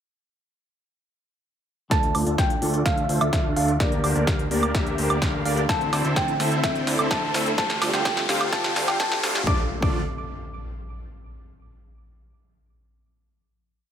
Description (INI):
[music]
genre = EDM, festival progressive house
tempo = 127 BPM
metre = 4/4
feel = straight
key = D minor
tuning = A4 = 440 Hz
[part]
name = thumb-piano-like synth pluck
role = melody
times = 1.9-10.0 s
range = D5 to D6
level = -28 LUFS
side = equal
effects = chorus, phaser, cassette tape, tape echo
[part]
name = mellow electric guitar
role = accompaniment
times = 1.9-10.0 s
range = D3 to Bb4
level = -32 LUFS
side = left 2 dB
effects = phaser, sidechain pumping
[part]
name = lush unison pad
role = sustained chords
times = 1.9-9.7 s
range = D3 to D5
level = -33 LUFS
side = left 1 dB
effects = none
[part]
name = supersaw chords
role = riff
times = 1.9-10.0 s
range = A3 to A5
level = -27 LUFS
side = right 1 dB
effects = lush chorus, sidechain pumping, low-pass filter, tape echo
[part]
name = fat analog bass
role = bass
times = 1.9-10.0 s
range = D2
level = -29 LUFS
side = equal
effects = sidechain pumping
[part]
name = big-room dance drum kit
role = drums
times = 1.9-9.4 s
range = hi-hat, snare drum, woodblock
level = -28 LUFS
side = right 1 dB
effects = high-pass filter on snare, high-pass filter on hats, high-pass filter on perc, high-pass filter on room
[part]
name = electronic kick drum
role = drums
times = 1.9-9.9 s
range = none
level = -25 LUFS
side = equal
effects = none
[part]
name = riser and impact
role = sound effects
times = 4.0-11.4 s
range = none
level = -34 LUFS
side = left 1 dB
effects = none
[sound]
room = light reverb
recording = high-pass filter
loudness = -20 LUFS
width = side -9 dB against mid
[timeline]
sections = 1.9-9.5 build; 9.5-11.4 final chord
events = build-up 1.9-9.5; drum fill 1.9-9.5; filter sweep on supersaw synth 1.9-9.5; filter sweep 1.9-9.5; riser 4.0-9.5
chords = 1.9 Dm; 3.8 Gm/D; 5.7 Am/D; 7.6 Fadd9/D; 9.5 Dm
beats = | 1.91 2.38 2.86 3.33 | 3.80 4.27 4.75 5.22 | 5.69 6.16 6.64 7.11 | 7.58 8.05 8.53 9.00 | 9.47 9.94 10.41 10.89